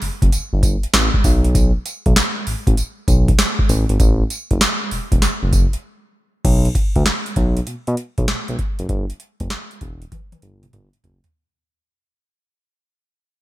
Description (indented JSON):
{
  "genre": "R&B, new jack swing",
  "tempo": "98 BPM",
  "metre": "4/4",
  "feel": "swing 67% on 16ths",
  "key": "unclear",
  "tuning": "A4 = 435 Hz",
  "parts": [
    { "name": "smooth synth bass", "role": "bass", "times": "0.0-11.2 s", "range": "E1 to B2", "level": "-19 LUFS", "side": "equal", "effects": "none" },
    { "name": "booming analog drum machine", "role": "drums", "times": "0.0-11.3 s", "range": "crash cymbal, hi-hat, kick drum, snare drum, tambourine, toms", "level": "-17 LUFS", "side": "equal", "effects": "overdrive, gated reverb" }
  ],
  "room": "little or no reverb",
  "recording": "bright 1980s-style digital production",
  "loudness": "-15 LUFS",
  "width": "side -16 dB against mid",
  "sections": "0.0-6.4 A section; 6.4-11.3 B section",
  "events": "break 5.8-6.4; fade-out 6.4-11.3; drum fill 10.1-11.3",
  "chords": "none"
}